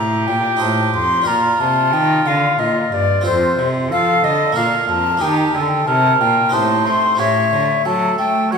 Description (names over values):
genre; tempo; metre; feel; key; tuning
classical, baroque-style sonata movement with continuo; 91 BPM; 3/4; straight; unclear; A4 = 440 Hz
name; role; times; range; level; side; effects
bright baroque flute; melody; 0.0-8.6 s; C5 to C6; -17 LUFS; left 5 dB; none
warm oboe; second line; 0.0-8.6 s; F4 to C#5; -20 LUFS; right 7 dB; none
harpsichord; accompaniment; 0.0-8.6 s; F2 to C5; -24 LUFS; equal; none
rich cello; bass; 0.0-8.6 s; F2 to A3; -21 LUFS; right 2 dB; none
room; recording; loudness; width
wet recital hall reverb, RT60 1.9 s; minimal, uncompressed stereo recording; -14 LUFS; side -5 dB against mid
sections
0.0-8.6 A section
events
none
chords
0.0 Bb; 0.6 F7/A; 1.3 Bb; 3.3 F; 4.6 Bbmaj7; 5.2 Eb; 6.5 Am7b5; 7.2 A7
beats
0.61 | 1.27 1.93 2.60 | 3.26 3.92 4.57 | 5.22 5.88 6.54 | 7.20 7.86 8.53